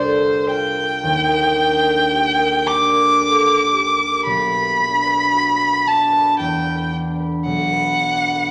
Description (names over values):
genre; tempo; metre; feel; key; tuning
classical, impressionist duo for violin and harp; 56 BPM; 3/4; rubato; unclear; A4 = 438 Hz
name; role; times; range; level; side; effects
rich violin; melody; 0.0-8.5 s; C5 to D6; -19 LUFS; equal; none
concert harp; accompaniment; 0.0-8.5 s; B1 to B4; -23 LUFS; equal; none
room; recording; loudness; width
wet recital hall reverb, RT60 1.5 s; none; -17 LUFS; mono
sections
0.0-8.5 A section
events
none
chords
0.0 C11; 1.0 Ebmaj7; 4.3 Bm; 6.4 Em9; 7.5 Bm